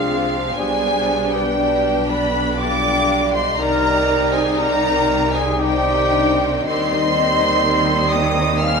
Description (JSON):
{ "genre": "classical", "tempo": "60 BPM", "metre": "3/4", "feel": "rubato", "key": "C minor", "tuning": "A4 = 437 Hz", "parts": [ { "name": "rich studio violin section", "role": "melody", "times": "0.0-8.8 s", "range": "F5 to F6", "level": "-22 LUFS", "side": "left 2 dB", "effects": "none" }, { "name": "mellow hollow small flute group", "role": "second line", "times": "0.0-8.8 s", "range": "Ab4 to Ab5", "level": "-25 LUFS", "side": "left 4 dB", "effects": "none" }, { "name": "rich studio violin section", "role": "second line", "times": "0.0-8.8 s", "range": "B3 to C5", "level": "-28 LUFS", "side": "left 3 dB", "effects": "none" }, { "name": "warm clarinet", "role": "second line", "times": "0.0-8.8 s", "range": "C4 to Eb4", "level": "-29 LUFS", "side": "left 2 dB", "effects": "none" }, { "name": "dark bassoon", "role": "accompaniment", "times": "0.0-8.8 s", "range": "F3 to G3", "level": "-24 LUFS", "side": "right 6 dB", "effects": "none" }, { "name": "rich studio viola section", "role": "accompaniment", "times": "0.0-8.8 s", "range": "D3 to Eb4", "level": "-27 LUFS", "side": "equal", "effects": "none" }, { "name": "mellow French horn section", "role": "sustained chords", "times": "0.0-8.8 s", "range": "F3 to Eb4", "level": "-26 LUFS", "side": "left 3 dB", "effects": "none" }, { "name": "dark trumpet section", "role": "stabs", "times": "0.0-8.8 s", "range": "F4 to F5", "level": "-23 LUFS", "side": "right 1 dB", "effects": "none" }, { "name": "clear studio double bass section", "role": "bass", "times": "0.0-8.8 s", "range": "B1 to Eb2", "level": "-26 LUFS", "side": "right 3 dB", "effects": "none" }, { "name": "rich studio cello section", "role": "bass", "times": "0.0-8.8 s", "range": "B2 to Eb3", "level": "-28 LUFS", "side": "right 1 dB", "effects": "none" } ], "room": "wet recital hall reverb, RT60 1.7 s", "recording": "minimal, uncompressed stereo recording", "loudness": "-15 LUFS", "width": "side -5 dB against mid", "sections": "0.0-8.8 A section", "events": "none", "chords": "0.0 Dm7b5/C; 0.6 G/B; 3.6 Cm; 6.7 Cm/Eb", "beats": "| 0.56 1.58 2.59 | 3.59 4.58 5.59 | 6.67 7.64 8.62" }